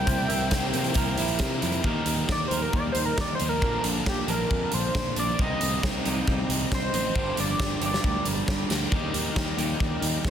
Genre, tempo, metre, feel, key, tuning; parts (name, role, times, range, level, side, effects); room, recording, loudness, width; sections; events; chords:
indie rock; 136 BPM; 4/4; straight; A4 = 440 Hz
octave-doubled lead; melody; 0.0-8.3 s; G4 to G5; -30 LUFS; equal; chorus, plate reverb, digital delay
tine electric piano; second line; 0.0-1.4 s; C5 to E5; -40 LUFS; left 2 dB; medium stereo tremolo, plate reverb, digital delay
string machine, violas; sustained chords; 0.0-10.3 s; D4 to Bb5; -40 LUFS; equal
biting overdriven guitar; riff; 0.0-10.3 s; G2 to E4; -32 LUFS; left 7 dB
electric guitar through a small old amp; riff; 0.0-10.3 s; G2 to Bb4; -32 LUFS; right 7 dB; analog chorus, digital delay
overdriven picked electric bass; bass; 0.0-10.3 s; G1 to C3; -30 LUFS; equal
big rock drum kit; drums; 0.1-10.3 s; hi-hat, kick drum, snare drum; -27 LUFS; equal; soft clipping on kick
light reverb; dense, heavily limited modern master; -23 LUFS; side -9 dB against mid
0.0-1.8 A section; 1.8-10.3 B section
analog synth lead solo 1.8-10.3
0.0 C7; 1.8 Ebmaj7; 3.6 Bbmaj7; 5.4 Cm7; 7.2 Gm7; 8.9 Ebmaj7